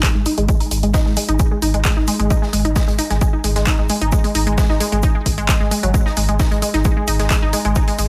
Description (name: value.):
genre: driving peak-time techno.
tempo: 132 BPM.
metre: 4/4.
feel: straight.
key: unclear.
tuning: A4 = 440 Hz.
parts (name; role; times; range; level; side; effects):
resonant blip pluck; riff; 0.0-8.1 s; F#3 to D#4; -23 LUFS; equal; chorus, tube saturation, sidechain pumping, digital delay.
saturated sub bass; bass; 0.0-8.1 s; G#1; -22 LUFS; equal; tube saturation, sidechain pumping, low-pass filter.
electronic kick drum; drums; 0.0-7.9 s; none; -19 LUFS; equal; none.
street-band drum kit; drums; 0.0-8.1 s; hi-hat, shaker, snare drum; -35 LUFS; equal; sidechain pumping on hats, high-pass filter on hats, high-pass filter on snare, sidechain pumping on perc, high-pass filter on perc, high-pass filter on room.
techno drum kit; drums; 0.0-8.1 s; handclaps, hi-hat; -26 LUFS; equal; overdrive.
room: light reverb, studio reverb.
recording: none.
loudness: -17 LUFS.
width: mono.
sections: 0.0-8.1 A section.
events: none.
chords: 0.0 G#5.